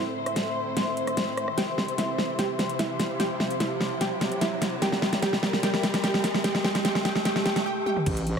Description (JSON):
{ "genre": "heavy wobble dubstep", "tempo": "148 BPM", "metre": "4/4", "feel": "half-time", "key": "unclear", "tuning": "A4 = 440 Hz", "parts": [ { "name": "wide unison pluck", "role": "melody", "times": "0.0-8.0 s", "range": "E4 to G5", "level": "-31 LUFS", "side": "right 2 dB", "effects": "digital delay" }, { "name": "warm symphonic string section", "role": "sustained chords", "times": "0.0-7.6 s", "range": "A2 to C5", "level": "-34 LUFS", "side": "left 2 dB", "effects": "sidechain pumping, low-pass filter" }, { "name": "riser", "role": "sound effects", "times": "0.1-7.7 s", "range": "none", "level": "-34 LUFS", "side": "right 1 dB", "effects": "none" }, { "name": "airy breathy pad", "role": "texture", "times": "0.0-7.7 s", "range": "C4 to C6", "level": "-33 LUFS", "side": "equal", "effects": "chorus, sidechain pumping" }, { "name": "dubstep drum kit", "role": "drums", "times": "0.3-8.4 s", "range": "crash cymbal, hi-hat, rim click, snare drum, toms", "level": "-27 LUFS", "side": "equal", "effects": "none" }, { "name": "wobble bass", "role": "bass", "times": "8.1-8.4 s", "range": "A1", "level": "-27 LUFS", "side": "equal", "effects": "chorus, overdrive" }, { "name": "electronic kick drum", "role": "drums", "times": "8.1-8.4 s", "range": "none", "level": "-29 LUFS", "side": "equal", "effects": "none" } ], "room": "moderate lush hall reverb, RT60 2.1 s", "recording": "none", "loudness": "-24 LUFS", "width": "side -6 dB against mid", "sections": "0.0-8.1 A section", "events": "build-up 0.0-8.1; drum fill 0.0-7.7, 7.9; riser 0.1-7.7; break 7.7-8.1", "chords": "0.0 Am; 1.6 C" }